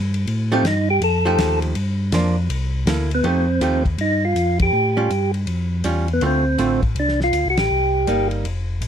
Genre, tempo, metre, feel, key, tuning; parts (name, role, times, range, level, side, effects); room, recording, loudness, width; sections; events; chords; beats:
soul jazz organ trio; 162 BPM; 4/4; swing 64% on 8ths; F mixolydian; A4 = 440 Hz
mellow tonewheel organ; bass; 0.0-8.9 s; F1 to A2; -21 LUFS; equal; overdrive, stopped rotary speaker
warm soul drum kit; drums; 0.1-8.9 s; hi-hat, kick drum, ride cymbal, snare drum; -28 LUFS; left 1 dB
percussive tonewheel organ; melody; 0.5-8.3 s; B3 to A4; -19 LUFS; equal; slow rotary speaker
archtop guitar, miked and amplified; accompaniment; 0.5-8.5 s; D3 to A4; -23 LUFS; right 3 dB
little or no reverb; close, detailed microphones; -17 LUFS; side -8 dB against mid
0.0-3.2 A section; 3.2-8.9 B section
tonewheel organ solo 0.0-3.2; band accent 4.5, 7.5
0.3 F9; 1.8 Gm7; 2.5 C13; 3.2 F9; 4.7 A7b13; 6.2 Dm7; 7.7 Cm7
| 0.27 0.65 1.02 1.39 | 1.76 2.13 2.50 2.87 | 3.25 3.62 3.99 4.36 | 4.73 5.10 5.47 5.85 | 6.22 6.59 6.96 7.33 | 7.70 8.07 8.45 8.82